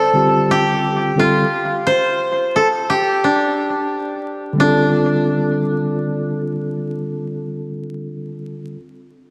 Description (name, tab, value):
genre	hip hop, jazz-hop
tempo	88 BPM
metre	4/4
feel	swing 65% on 16ths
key	D minor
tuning	A4 = 439 Hz
part	koto	melody	0.0-8.8 s	D4 to D5	-19 LUFS	equal	analog delay
part	mellow tine electric piano	accompaniment	0.1-8.8 s	D3 to A4	-21 LUFS	equal	none
room	wet lush hall reverb, RT60 2.8 s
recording	dreamy mix soaked in reverb, vinyl crackle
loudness	-18 LUFS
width	mono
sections	0.0-4.6 A section; 4.6-7.3 B section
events	break 1.9-4.6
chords	0.0 Gsus2; 1.9 N.C.; 4.6 Dm7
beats	0.49 1.17 | 1.85 2.54 3.22 3.90 | 4.58 5.26 5.95 6.63